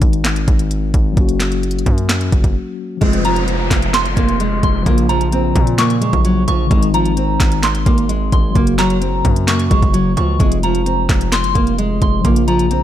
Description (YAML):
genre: hip hop, trap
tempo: 130 BPM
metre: 4/4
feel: half-time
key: F phrygian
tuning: A4 = 441 Hz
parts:
  - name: mellow tine electric piano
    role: accompaniment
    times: 0.0-12.8 s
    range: Db3 to Gb4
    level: -21 LUFS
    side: left 6 dB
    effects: medium stereo tremolo
  - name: distorted 808-style bass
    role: bass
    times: 0.0-12.8 s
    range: F1 to Bb2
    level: -18 LUFS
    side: equal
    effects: distortion
  - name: trap drum kit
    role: drums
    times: 0.0-12.8 s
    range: handclaps, hi-hat, kick drum, snare drum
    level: -16 LUFS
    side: equal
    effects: none
  - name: nylon-string guitar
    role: melody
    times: 3.0-12.8 s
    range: F3 to C4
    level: -19 LUFS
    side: right 2 dB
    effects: none
  - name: downlifter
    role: sound effects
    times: 3.0-6.7 s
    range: none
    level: -26 LUFS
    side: equal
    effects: none
  - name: soft synth bell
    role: second line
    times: 3.2-12.8 s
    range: Bb5 to Db6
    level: -21 LUFS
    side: equal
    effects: chorus, phaser, ping-pong delay
room: digital ambience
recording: none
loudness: -13 LUFS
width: side -11 dB against mid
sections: 0.0-3.0 A section; 3.0-12.8 B section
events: break 2.6-3.0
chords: 0.0 Ab; 1.2 Gb; 3.0 Fm; 4.9 Bbm; 6.7 Ab; 8.6 Gb; 10.4 Fm; 12.2 Bbm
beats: 0.25 0.71 | 1.17 1.63 2.09 2.56 | 3.02 3.48 3.94 4.40 | 4.86 5.32 5.79 6.25 | 6.71 7.17 7.63 8.09 | 8.55 9.02 9.48 9.94 | 10.40 10.86 11.32 11.79 | 12.25 12.71